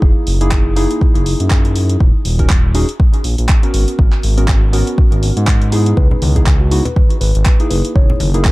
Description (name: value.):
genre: deep house.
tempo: 121 BPM.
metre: 4/4.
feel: swing 57% on 16ths.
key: G# minor.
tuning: A4 = 440 Hz.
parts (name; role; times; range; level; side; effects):
warm analog keys; stabs; 0.0-8.5 s; A#3 to A#4; -20 LUFS; equal; chorus, vintage 12-bit sampler grit, sidechain pumping, dub echo.
smooth synth bass; bass; 0.0-8.5 s; D#1 to G#2; -15 LUFS; equal; sidechain pumping.
electronic kick drum; drums; 0.0-8.5 s; none; -12 LUFS; equal; none.
deep house drum kit; drums; 0.3-8.5 s; handclaps, hi-hat; -23 LUFS; equal; none.
mellow tine electric piano; melody; 6.0-8.5 s; F#4 to C#5; -25 LUFS; equal; slow stereo tremolo, vintage 12-bit sampler grit, dub echo.
congas; percussion; 6.1-8.3 s; none; -23 LUFS; left 1 dB; dub echo.
room: little or no reverb.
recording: echo-heavy mix, vinyl crackle.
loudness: -11 LUFS.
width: side -20 dB against mid.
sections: 0.0-8.5 A section.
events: none.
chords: 0.0 F#13; 2.0 D#m7; 3.7 G#m11; 7.7 F#13.